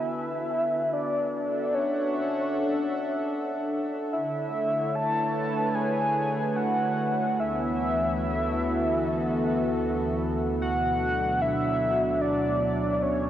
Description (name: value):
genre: ambient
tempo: 74 BPM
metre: 4/4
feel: straight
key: unclear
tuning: A4 = 438 Hz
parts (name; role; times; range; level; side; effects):
- warm velvety synth lead; melody; 0.0-13.3 s; C#5 to A5; -27 LUFS; equal; chorus, tremolo, tape echo
- warm analog pad; sustained chords; 0.0-13.3 s; D2 to F#5; -27 LUFS; equal; chorus
room: wet huge ambient reverb, RT60 8.0 s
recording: worn, warbling old tape, cassette tape, warbly pitch drift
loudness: -24 LUFS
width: side -11 dB against mid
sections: 0.0-13.3 A section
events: none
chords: 0.0 Bm/D; 0.9 Dmaj9; 4.1 E9sus4/D; 10.6 Bm9/D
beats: 0.08 | 0.89 1.70 2.51 3.32 | 4.13 4.94 5.75 6.57 | 7.38 8.19 9.00 9.81 | 10.62 11.43 12.24 13.05